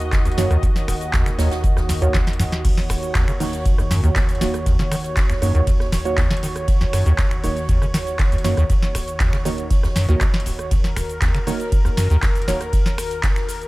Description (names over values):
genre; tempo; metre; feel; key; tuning
acid house; 119 BPM; 4/4; straight; Eb minor; A4 = 440 Hz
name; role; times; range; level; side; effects
warm analog pad; sustained chords; 0.0-13.7 s; Eb2 to Eb5; -26 LUFS; equal; chorus, sidechain pumping
booming analog drum machine; drums; 0.0-13.7 s; crash cymbal, finger snaps, handclaps, hi-hat, ride cymbal, rim click, shaker, snare drum; -27 LUFS; equal; none
swinging big-band drum kit; drums; 0.0-13.6 s; hi-hat, snare drum; -40 LUFS; right 2 dB; none
electronic kick drum; drums; 0.1-13.3 s; none; -20 LUFS; equal; none
acid bass, square; riff; 0.3-12.5 s; Eb1 to Eb3; -20 LUFS; equal; overdrive, lush chorus, sidechain pumping
deep mellow chord stab; stabs; 0.4-12.6 s; Bb3 to Eb5; -27 LUFS; right 3 dB; chorus, tape echo
room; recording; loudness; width
light reverb; none; -17 LUFS; side -20 dB against mid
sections
0.0-13.7 A section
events
drum fill 1.9-2.6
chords
0.0 Ebm7